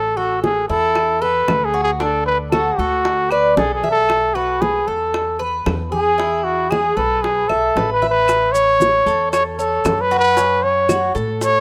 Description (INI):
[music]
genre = latin, Cuban son and guajira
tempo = 115 BPM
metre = 4/4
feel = straight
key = A major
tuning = A4 = 440 Hz
[part]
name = breathy trumpet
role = melody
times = 0.0-11.6 s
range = F#4 to C#5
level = -19 LUFS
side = equal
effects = none
[part]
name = upright bass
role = bass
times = 0.0-11.6 s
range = A1 to A2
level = -30 LUFS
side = equal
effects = none
[part]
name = Cuban tres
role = arpeggios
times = 0.2-11.6 s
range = C#4 to E5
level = -25 LUFS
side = equal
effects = none
[part]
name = congas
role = percussion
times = 0.2-11.6 s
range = none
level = -33 LUFS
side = equal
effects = none
[part]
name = bongos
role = percussion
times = 0.4-11.6 s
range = none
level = -26 LUFS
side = equal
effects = none
[part]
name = claves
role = percussion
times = 1.0-11.2 s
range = none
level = -34 LUFS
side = equal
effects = none
[part]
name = maracas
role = percussion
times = 8.3-11.6 s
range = none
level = -35 LUFS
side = equal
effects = none
[sound]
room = light reverb, small room ambience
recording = rough home demo mix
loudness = -17 LUFS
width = mono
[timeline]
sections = 0.0-11.6 A section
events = none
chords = 0.0 A5; 2.0 D6; 4.1 B7sus4; 6.2 E; 8.3 A; 10.4 F#m